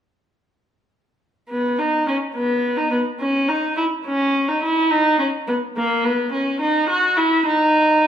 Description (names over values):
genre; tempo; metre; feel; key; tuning
classical; 70 BPM (dotted quarters); 12/8; straight; unclear; A4 = 435 Hz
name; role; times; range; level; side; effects
rich viola; accompaniment; 1.5-8.1 s; A#3 to F#4; -17 LUFS; equal; none
room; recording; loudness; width
wet recital hall reverb, RT60 1.4 s; minimal, uncompressed stereo recording; -17 LUFS; side -9 dB against mid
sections
1.5-8.1 A section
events
none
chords
none